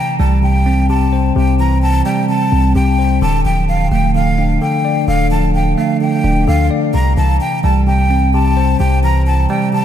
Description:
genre	hip hop, trap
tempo	129 BPM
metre	4/4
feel	half-time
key	unclear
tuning	A4 = 443 Hz
part	breathy jazz flute	melody	0.0-9.8 s	F5 to Bb5	-18 LUFS	left 1 dB	analog delay
part	bell-like tine electric piano	accompaniment	0.0-9.8 s	C3 to D5	-16 LUFS	moving between left 7 dB and right 4 dB	auto-pan
part	long sustained 808-style bass	bass	0.2-9.5 s	D1 to D2	-14 LUFS	equal	none
room	moderate cathedral reverb, RT60 4.8 s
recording	dreamy mix soaked in reverb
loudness	-12 LUFS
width	side -10 dB against mid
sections	0.0-9.8 A section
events	none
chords	0.0 C; 3.2 Dm; 6.9 C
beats	0.43 0.89 | 1.36 1.82 2.29 2.75 | 3.22 3.69 4.15 4.62 | 5.08 5.54 6.01 6.47 | 6.94 7.41 7.87 8.34 | 8.80 9.27 9.73

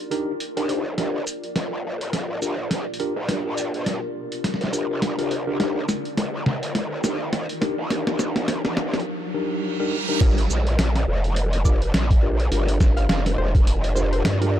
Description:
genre	glitch hop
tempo	104 BPM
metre	4/4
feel	swing 58% on 16ths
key	G minor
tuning	A4 = 440 Hz
part	mellow tine electric piano	stabs	0.0-14.6 s	D4 to C5	-28 LUFS	equal	slow stereo tremolo, sidechain pumping, low-pass filter, tape echo
part	granular cloud pad	texture	0.0-9.1 s	F4 to D5	-35 LUFS	left 1 dB	built-in reverb, sidechain pumping
part	boom bap sampler-style drum kit	drums	0.1-14.5 s	crash cymbal, hi-hat, shaker, snare drum	-26 LUFS	equal	none
part	growl bass	bass	0.6-14.6 s	F1 to G2	-24 LUFS	equal	chorus, tube saturation, high-pass filter
part	riser and reverse cymbal	sound effects	2.2-10.2 s	none	-32 LUFS	right 1 dB	none
part	electronic kick drum	drums	10.2-13.6 s	none	-18 LUFS	equal	none
part	woody wave-folded pluck	melody	11.7-14.2 s	C5 to F5	-32 LUFS	right 1 dB	chorus, tape echo
room	light reverb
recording	dark, warm production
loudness	-21 LUFS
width	side -11 dB against mid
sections	0.0-10.2 A section; 10.2-14.6 B section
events	build-up 0.0-10.2; drum fill 1.0-9.1; riser 2.2-10.2; reverse cymbal 9.1-10.2; drop 10.2-14.6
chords	0.0 Cm9; 1.0 Gm7; 5.6 Cm9; 10.2 Gm7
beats	0.40 | 0.98 1.56 2.13 2.71 | 3.29 3.87 4.44 5.02 | 5.59 6.17 6.75 7.33 | 7.90 8.48 9.06 9.63 | 10.21 10.79 11.37 11.94 | 12.52 13.10 13.67 14.25

